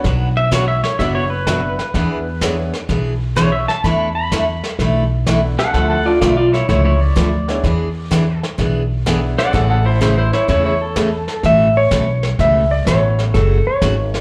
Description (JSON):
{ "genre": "country, western swing", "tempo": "126 BPM", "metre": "4/4", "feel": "swing 67% on 8ths", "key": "A major", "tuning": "A4 = 440 Hz", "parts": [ { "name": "bright upright piano", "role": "accompaniment", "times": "0.0-9.8, 12.9-13.3 s", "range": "A3 to E5", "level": "-28 LUFS", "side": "equal", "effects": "slapback echo" }, { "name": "picked steel-string acoustic guitar", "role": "accompaniment", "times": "0.0-13.9 s", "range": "B2 to A4", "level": "-22 LUFS", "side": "equal", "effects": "none" }, { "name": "upright bass", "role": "bass", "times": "0.0-14.2 s", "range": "F#1 to E2", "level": "-20 LUFS", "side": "equal", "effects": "none" }, { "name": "vintage brush drum kit", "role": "drums", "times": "0.0-14.2 s", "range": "brushed snare drum, hi-hat, kick drum, snare drum", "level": "-27 LUFS", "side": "equal", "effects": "none" }, { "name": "pedal steel guitar", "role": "second line", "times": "0.4-11.4 s", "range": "E4 to B5", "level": "-21 LUFS", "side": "equal", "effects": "slapback echo" }, { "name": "clean lap steel guitar", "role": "melody", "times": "11.5-14.2 s", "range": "A4 to E5", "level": "-18 LUFS", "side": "equal", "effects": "slapback echo" } ], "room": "light reverb, studio reverb", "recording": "live gig heard through the venue's PA, club ambience", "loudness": "-16 LUFS", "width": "mono", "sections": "0.0-11.4 A section; 11.4-14.2 B section", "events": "pedal steel guitar solo 0.0-11.4", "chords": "0.0 Bm; 1.9 E7; 3.8 E7sus4; 5.7 Dmadd9; 7.6 E7; 9.5 Amaj7; 11.4 Aadd9; 13.3 F#m", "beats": "| 0.05 0.52 1.00 1.47 | 1.95 2.42 2.90 3.37 | 3.84 4.32 4.79 5.27 | 5.74 6.22 6.69 7.17 | 7.64 8.12 8.59 9.07 | 9.54 10.02 10.49 10.96 | 11.44 11.91 12.39 12.87 | 13.34 13.81" }